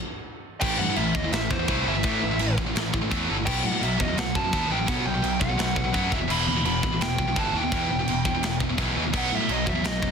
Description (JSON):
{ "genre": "heavy metal", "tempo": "169 BPM", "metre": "4/4", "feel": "straight", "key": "unclear", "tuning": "A4 = 440 Hz", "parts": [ { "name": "dark smooth lead guitar", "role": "melody", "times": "0.6-10.1 s", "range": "C5 to B5", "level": "-29 LUFS", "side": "right 1 dB", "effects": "overdrive" }, { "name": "heavy high-gain guitar", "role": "riff", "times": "0.6-10.1 s", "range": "E2 to B3", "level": "-26 LUFS", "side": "left 1 dB", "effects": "distortion" }, { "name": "growling picked electric bass", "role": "bass", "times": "0.6-10.1 s", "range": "E1 to B2", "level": "-30 LUFS", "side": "equal", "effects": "overdrive" }, { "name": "tight metal drum kit", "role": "drums", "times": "0.6-10.1 s", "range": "china cymbal, crash cymbal, kick drum, snare drum", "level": "-28 LUFS", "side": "right 1 dB", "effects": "soft clipping on kick" } ], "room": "small room ambience", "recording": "dense, heavily limited modern master", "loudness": "-22 LUFS", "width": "side -6 dB against mid", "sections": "0.6-10.1 A section", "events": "stop 0.0-0.6", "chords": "0.0 N.C.; 0.6 A5; 3.5 B5; 6.1 Em; 9.1 B" }